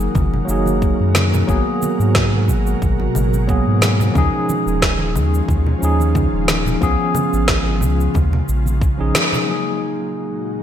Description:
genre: sunset chillout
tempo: 90 BPM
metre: 4/4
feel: swing 54% on 16ths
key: G# dorian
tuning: A4 = 439 Hz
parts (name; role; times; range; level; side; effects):
- tine electric piano; accompaniment; 0.0-10.6 s; E#3 to G#4; -20 LUFS; moving between left 4 dB and right 3 dB; medium tremolo, auto-pan, ping-pong delay
- ethereal airy pad; sustained chords; 0.0-10.6 s; A#2 to A#4; -25 LUFS; equal; ensemble chorus, built-in reverb
- round analog bass; bass; 0.0-9.1 s; D#1 to G#2; -18 LUFS; equal; none
- electronic shaker, congas and snare drum; drums; 0.0-9.5 s; none; -21 LUFS; left 1 dB; low-pass filter on perc, low-pass filter on snare, gated reverb
- congas; percussion; 0.1-9.5 s; none; -28 LUFS; right 2 dB; none
- electronic kick drum; drums; 0.2-9.0 s; none; -20 LUFS; equal; none
room: moderate lush hall reverb, RT60 1.7 s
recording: bright 1980s-style digital production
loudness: -15 LUFS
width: side -10 dB against mid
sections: 0.0-9.5 A section; 9.5-10.6 B section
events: band accent 9.2-9.5; filter sweep on drum 9.5-10.6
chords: 0.0 F#69; 1.5 G#m9; 4.2 D#9sus4; 6.8 C#7; 8.2 D#9sus4; 9.5 F#69

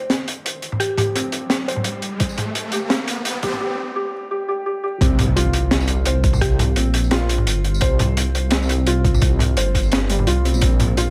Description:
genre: half-time drum and bass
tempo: 171 BPM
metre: 4/4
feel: swing 54% on 16ths, half-time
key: unclear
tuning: A4 = 439 Hz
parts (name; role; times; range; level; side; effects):
- felt-muted upright piano; arpeggios; 0.0-11.1 s; G3 to C5; -27 LUFS; equal; vintage 12-bit sampler grit, low-pass filter, digital delay
- riser and impact; sound effects; 0.8-6.4 s; none; -31 LUFS; equal; none
- crunchy breakbeat drum kit; drums; 0.1-11.0 s; hi-hat, snare drum, tambourine, toms; -24 LUFS; equal; none
- mallet-like synth pluck; melody; 0.8-1.1, 6.4-6.7 s; G4; -29 LUFS; equal; chorus, digital delay
- electronic kick drum; drums; 2.2-10.7 s; none; -21 LUFS; equal; overdrive
- dark detuned saw bass; bass; 5.0-11.1 s; G1 to C2; -21 LUFS; equal; tube saturation
room: light reverb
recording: high-pass filter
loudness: -20 LUFS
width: mono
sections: 0.0-5.0 A section; 5.0-11.1 B section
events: build-up 0.0-5.0; filter sweep 0.0-5.0; riser 0.8-3.6; break 3.6-5.0; drop 5.0-11.1; impact 5.0-6.4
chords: 0.0 C5

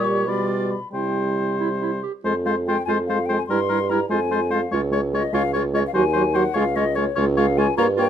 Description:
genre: quick classical-period movement for wind quintet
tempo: 90-99 BPM (dotted quarters)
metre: 6/8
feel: rubato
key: F minor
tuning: A4 = 444 Hz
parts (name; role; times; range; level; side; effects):
- mellow hollow silver concert flute; melody; 0.0-8.1 s; Db5 to D6; -27 LUFS; left 8 dB; none
- clear oboe; second line; 0.0-8.1 s; Bb4 to D5; -27 LUFS; left 5 dB; none
- warm French horn; accompaniment; 0.0-8.1 s; Gb3 to Bb3; -26 LUFS; equal; none
- warm clarinet; accompaniment; 0.0-8.1 s; E4 to G4; -27 LUFS; right 8 dB; none
- dark bassoon; bass; 0.0-8.1 s; Db2 to C3; -23 LUFS; right 2 dB; none
room: light reverb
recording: lossy compression artefacts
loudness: -19 LUFS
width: side -9 dB against mid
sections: 0.0-2.2 A section; 2.2-8.1 B section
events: none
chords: 0.3 G7/B; 0.9 C; 2.2 Fm; 3.5 Edim/G; 4.1 Fm; 4.7 Db; 5.9 Cdim/Eb; 6.6 Db

